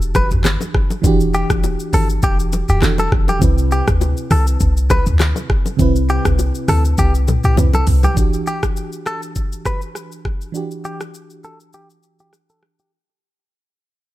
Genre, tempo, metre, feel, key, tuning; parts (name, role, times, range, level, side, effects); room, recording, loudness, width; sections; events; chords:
afrobeats; 101 BPM; 4/4; swing 55% on 16ths; E minor; A4 = 443 Hz
FM electric piano with tremolo; accompaniment; 0.0-12.9 s; C3 to B4; -23 LUFS; right 3 dB; low-pass filter
clean 808-style bass; bass; 0.0-8.1 s; D1 to D2; -16 LUFS; equal
afro-pop drum kit; drums; 0.0-12.9 s; handclaps, hi-hat, kick drum, rim click, shaker, toms; -18 LUFS; equal
direct-recorded clean electric guitar; melody; 0.2-12.9 s; G4 to B4; -23 LUFS; equal; vibrato effect, low-pass filter, tape echo
bongos and congas; percussion; 0.2-8.2 s; -22 LUFS; left 2 dB
little or no reverb; -14 LUFS; side -15 dB against mid
0.0-8.2 A section; 8.2-12.9 B section
drum fill 7.0-8.2; fade-out 8.2-12.9; filter sweep 8.2-12.9
0.0 Em9; 3.4 Cmaj7; 8.2 Em9